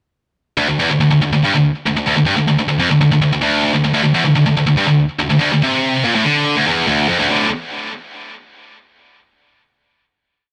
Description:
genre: metal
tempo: 143 BPM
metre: 4/4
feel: straight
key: D minor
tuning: A4 = 438 Hz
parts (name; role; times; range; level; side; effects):
- heavy high-gain guitar; solo; 0.6-7.5 s; D2 to D3; -15 LUFS; equal; distortion, delay
room: little or no reverb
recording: none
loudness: -15 LUFS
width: mono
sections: 0.6-7.3 riff; 7.3-9.0 final chord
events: none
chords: 0.6 N.C.; 7.3 D5

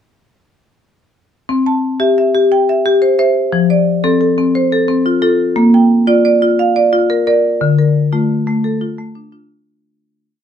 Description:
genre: southern african traditional, mbira-style interlocking cycle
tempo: 118 BPM (dotted quarters)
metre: 12/8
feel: straight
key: C mixolydian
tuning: A4 = 440 Hz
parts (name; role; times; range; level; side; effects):
- marimba with medium hard mallets; solo; 1.5-9.8 s; D3 to A5; -11 LUFS; left 1 dB; none
room: wet studio reverb, RT60 0.6 s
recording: dark, warm production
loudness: -11 LUFS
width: side -8 dB against mid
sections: 1.5-9.7 A section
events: fade-out 7.6-9.7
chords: 1.5 C; 3.5 F; 5.6 Bb; 7.6 Dm

